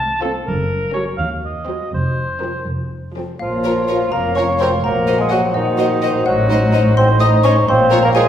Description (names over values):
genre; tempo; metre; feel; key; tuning
cinematic, playful, whimsical film cue; 84 BPM (dotted quarters); 6/8; straight; Bb minor; A4 = 440 Hz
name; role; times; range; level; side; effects
mellow cor anglais; second line; 0.0-8.3 s; Eb4 to A5; -23 LUFS; right 1 dB; none
dark chamber cello section; bass; 0.0-8.3 s; C2 to Bb2; -23 LUFS; right 1 dB; none
dark chamber double bass section; bass; 0.0-8.3 s; F1 to Eb2; -21 LUFS; equal; none
warm chamber violin section; melody; 0.2-8.2 s; A4 to Eb5; -27 LUFS; left 3 dB; none
warm chamber violin section; second line; 0.2-8.2 s; C4 to C5; -26 LUFS; left 4 dB; none
warm studio viola section; accompaniment; 0.2-8.2 s; F3 to Gb4; -27 LUFS; right 1 dB; none
xylophone with rubber mallets; melody; 3.4-8.3 s; Eb5 to Eb6; -23 LUFS; left 1 dB; none
mellow clarinet; second line; 3.4-8.3 s; C5 to Db5; -26 LUFS; left 3 dB; none
silver concert flute; second line; 3.4-8.3 s; Eb5 to Gb5; -26 LUFS; equal; none
mellow bassoon; accompaniment; 3.4-8.3 s; Eb3 to Eb4; -18 LUFS; equal; none
dark French horn section; sustained chords; 3.4-8.3 s; Eb4 to Db5; -24 LUFS; left 2 dB; none
room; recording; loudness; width
wet recital hall reverb, RT60 1.6 s; recorded in a church or concert hall; -14 LUFS; side -10 dB against mid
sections
0.0-3.4 A section; 3.4-8.3 B section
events
none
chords
0.5 Gb; 1.2 Cdim/Eb; 1.9 Fsus4; 3.4 Bbm; 4.8 Cm7b5/Bb; 6.3 Adim7; 7.7 Bbm